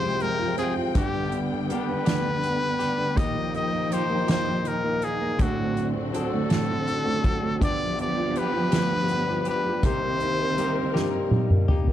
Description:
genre	six-eight pop ballad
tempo	54 BPM (dotted quarters)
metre	6/8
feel	straight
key	unclear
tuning	A4 = 440 Hz
part	bright trumpet	melody	0.0-11.3 s	F#4 to Eb5	-28 LUFS	left 1 dB	none
part	felt-muted upright piano	accompaniment	0.0-11.9 s	D1 to Bb4	-29 LUFS	right 3 dB	none
part	warm studio string section	sustained chords	0.0-11.9 s	D3 to G5	-31 LUFS	equal	none
part	direct-recorded clean electric guitar	arpeggios	0.0-11.9 s	G2 to A4	-32 LUFS	left 8 dB	harmonic tremolo
part	soft-mallet drum kit	drums	0.2-11.9 s	hi-hat, kick drum, snare drum, toms	-25 LUFS	equal	none
room	light reverb, small room ambience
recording	dark, warm production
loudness	-22 LUFS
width	side -11 dB against mid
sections	0.0-11.9 A section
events	drum fill 10.9-11.9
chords	0.0 Fmadd9; 1.0 G; 3.2 Ebadd9; 5.4 D7; 7.6 G7; 9.8 Cm7

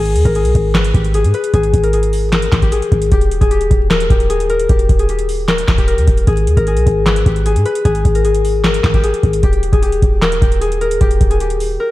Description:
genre	hip hop, trap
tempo	152 BPM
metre	4/4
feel	half-time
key	G# harmonic minor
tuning	A4 = 440 Hz
part	concert harp	melody	0.0-11.9 s	G4 to B4	-17 LUFS	left 3 dB	none
part	warm 808-style bass	bass	0.0-11.8 s	D#1 to G#2	-15 LUFS	equal	none
part	booming analog drum machine	drums	0.1-11.7 s	handclaps, hi-hat, kick drum, snare drum	-16 LUFS	equal	none
room	light reverb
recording	vinyl crackle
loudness	-11 LUFS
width	side -16 dB against mid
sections	0.0-11.9 A section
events	none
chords	0.0 G#m; 3.1 D#; 6.3 G#m; 9.4 D#

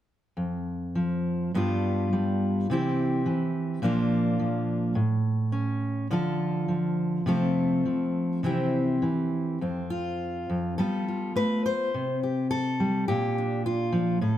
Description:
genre	folk, solo fingerstyle acoustic guitar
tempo	104 BPM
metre	4/4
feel	rubato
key	F major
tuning	A4 = 440 Hz
part	fingerpicked steel-string acoustic guitar	solo	0.4-14.4 s	F2 to C5	-24 LUFS	equal	none
room	light reverb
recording	close, detailed microphones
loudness	-24 LUFS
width	side -12 dB against mid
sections	0.4-9.6 A section; 9.6-14.4 B section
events	none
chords	0.4 N.C.; 1.5 G7; 2.7 C; 3.8 Bb; 5.0 A; 6.1 Dm; 7.3 F/C; 8.4 C; 9.6 F5; 10.8 G7; 11.9 C5; 13.1 Bb

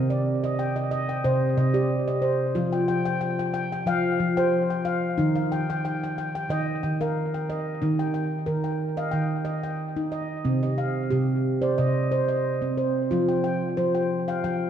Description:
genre	world meditative, meditative tuned percussion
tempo	91 BPM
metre	4/4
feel	swing 54% on 16ths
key	Eb major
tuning	A4 = 440 Hz
part	handpan	solo	0.0-14.7 s	C3 to G5	-23 LUFS	equal	tape echo
room	wet scoring stage reverb, RT60 1.7 s, small room ambience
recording	dark, warm production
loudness	-23 LUFS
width	side -9 dB against mid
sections	0.0-7.8 A section; 7.8-14.7 B section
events	none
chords	0.0 Cm; 2.6 F5; 5.2 Eb; 10.5 Cm; 13.1 F5

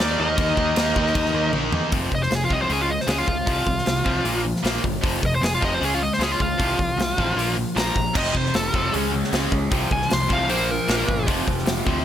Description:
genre	hard rock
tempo	154 BPM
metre	4/4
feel	straight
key	unclear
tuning	A4 = 439 Hz
part	smooth overdriven lead guitar	melody	0.0-11.3 s	F4 to C6	-24 LUFS	equal	none
part	octave-fuzz lead guitar	second line	0.0-1.5 s	Bb4	-32 LUFS	right 3 dB	distortion
part	brassy analog pad	sustained chords	0.0-1.9, 8.2-12.0 s	F3 to F5	-37 LUFS	right 1 dB	none
part	cranked stack guitar	riff	0.0-12.0 s	F2 to Eb4	-25 LUFS	left 1 dB	overdrive
part	overdriven electric guitar	riff	0.0-1.9, 8.1-12.0 s	F2 to Eb4	-28 LUFS	equal	phaser
part	overdriven picked electric bass	bass	0.0-12.0 s	F1 to E2	-28 LUFS	equal	none
part	big rock drum kit	drums	0.0-12.0 s	crash cymbal, hi-hat, kick drum, snare drum, toms	-25 LUFS	equal	none
room	small room ambience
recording	none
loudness	-19 LUFS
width	side -10 dB against mid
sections	0.0-1.9 A section; 1.9-12.0 B section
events	drum fill 1.5-1.9; lead electric guitar solo 1.9-12.0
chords	0.0 Eb5; 1.9 F5; 2.7 Db5; 3.5 F5/C; 4.3 Bb5; 5.0 F5; 5.8 Db5; 6.6 F/C; 7.4 Bb5; 8.2 F; 8.9 Db5; 9.7 F5/C; 10.5 Bb5; 11.3 F5

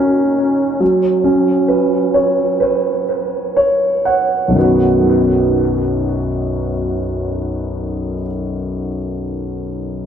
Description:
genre	pop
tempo	60-70 BPM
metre	4/4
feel	straight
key	B major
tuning	A4 = 440 Hz
part	warm concert grand piano	accompaniment	0.0-10.1 s	B1 to F#5	-14 LUFS	equal	analog delay
room	moderate echo chamber reverb, RT60 1.4 s, studio reverb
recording	echo-heavy mix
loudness	-14 LUFS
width	side -8 dB against mid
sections	0.0-4.6 A section; 4.6-8.6 B section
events	slowing down 0.0-4.6; grand piano fill 3.1-4.6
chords	0.0 D#m7; 0.8 F#sus4; 4.6 B

